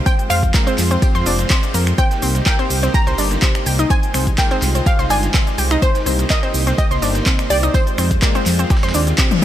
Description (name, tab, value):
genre	progressive house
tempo	125 BPM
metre	4/4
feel	straight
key	C minor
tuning	A4 = 440 Hz
part	wide unison pluck	melody	0.0-9.4 s	C5 to Bb5	-24 LUFS	right 1 dB	ping-pong delay
part	supersaw pad	sustained chords	0.0-9.4 s	Ab3 to C5	-25 LUFS	equal	sidechain pumping
part	analog pluck	arpeggios	0.1-9.4 s	C3 to C6	-23 LUFS	equal	chorus, sidechain pumping, ping-pong delay
part	deep house drum kit	drums	0.1-9.4 s	finger snaps, handclaps, hi-hat, shaker, toms	-22 LUFS	left 1 dB	none
part	dusty soul sampler-style drum kit	drums	0.1-9.4 s	hi-hat, snare drum, tambourine	-32 LUFS	right 1 dB	none
part	electronic kick drum	drums	0.1-9.3 s	none	-17 LUFS	equal	none
part	dark detuned saw bass	bass	0.3-9.4 s	F1 to F2	-18 LUFS	equal	sidechain pumping
room	digital ambience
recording	none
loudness	-14 LUFS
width	side -12 dB against mid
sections	0.0-9.4 A section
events	band accent 9.2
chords	0.1 Fm; 2.0 Cm7; 3.9 Ab6/C; 5.8 Cm7; 7.7 Fm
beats	| 0.06 0.54 1.02 1.50 | 1.98 2.46 2.94 3.42 | 3.90 4.38 4.86 5.34 | 5.82 6.30 6.78 7.26 | 7.74 8.22 8.70 9.18